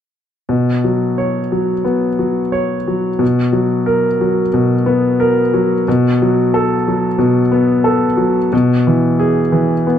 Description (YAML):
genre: neoclassical minimalist piano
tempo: 90 BPM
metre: 4/4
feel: rubato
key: unclear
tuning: A4 = 440 Hz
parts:
  - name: clear grand piano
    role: solo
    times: 0.5-10.0 s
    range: B2 to C#5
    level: -12 LUFS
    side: left 1 dB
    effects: none
room: light reverb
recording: dark, warm production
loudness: -12 LUFS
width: side -9 dB against mid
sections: 0.5-10.0 A section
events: none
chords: 0.5 Bsus2; 3.2 F#/B; 5.9 F#madd11/B; 8.5 E/B